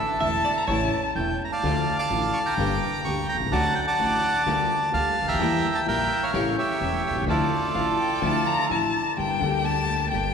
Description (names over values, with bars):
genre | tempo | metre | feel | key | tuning
tango | 127 BPM | 4/4 | rubato | D harmonic minor | A4 = 440 Hz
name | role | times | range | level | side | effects
bandoneon | melody | 0.0-8.7 s | F4 to D6 | -24 LUFS | right 2 dB | none
archtop guitar, miked and amplified | second line | 0.2-1.0 s | C#5 to E5 | -31 LUFS | right 3 dB | none
dark violin | second line | 0.2-1.0, 7.7-10.3 s | F5 to Bb5 | -27 LUFS | left 4 dB | none
dark baby grand piano | accompaniment | 0.2-10.3 s | E1 to G4 | -28 LUFS | left 4 dB | none
rich symphonic string section | stabs | 0.2-10.3 s | F3 to G4 | -34 LUFS | right 1 dB | none
upright bass | bass | 0.2-10.3 s | E1 to E2 | -32 LUFS | right 2 dB | none
room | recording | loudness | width
wet church reverb, RT60 3.3 s | recorded in a church or concert hall | -21 LUFS | side -6 dB against mid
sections
0.0-9.2 A section; 9.2-10.3 B section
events
violin solo 9.2-10.3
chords
0.0 Asus4; 0.7 A; 1.6 Dm; 2.6 Gm; 3.5 D; 4.5 Gm7/D; 5.4 Edim; 6.3 A7; 7.3 Dmadd9; 9.2 Gm